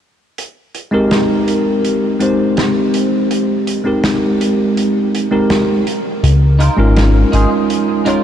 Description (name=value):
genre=vaporwave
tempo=82 BPM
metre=4/4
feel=straight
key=Ab major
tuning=A4 = 440 Hz
part: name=loose indie drum kit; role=drums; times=0.4-8.2 s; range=hi-hat, snare drum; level=-22 LUFS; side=right 1 dB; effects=vintage 12-bit sampler grit
part: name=bell-like tine electric piano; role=accompaniment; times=0.9-8.2 s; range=Ab3 to Db5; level=-14 LUFS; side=equal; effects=analog chorus, vintage 12-bit sampler grit, diffuse ambient delay
part: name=chorused synth bass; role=bass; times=6.2-7.5 s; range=Ab1 to Db2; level=-10 LUFS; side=equal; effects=none
part: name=clean electric guitar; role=riff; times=6.6-8.2 s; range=Eb4 to Bb4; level=-20 LUFS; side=right 1 dB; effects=ensemble chorus, diffuse ambient delay
room=wet huge ambient reverb, RT60 8.0 s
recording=dreamy mix soaked in reverb, cassette tape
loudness=-12 LUFS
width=side -9 dB against mid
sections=0.4-8.2 A section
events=none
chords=0.4 Abmaj7; 5.9 Db69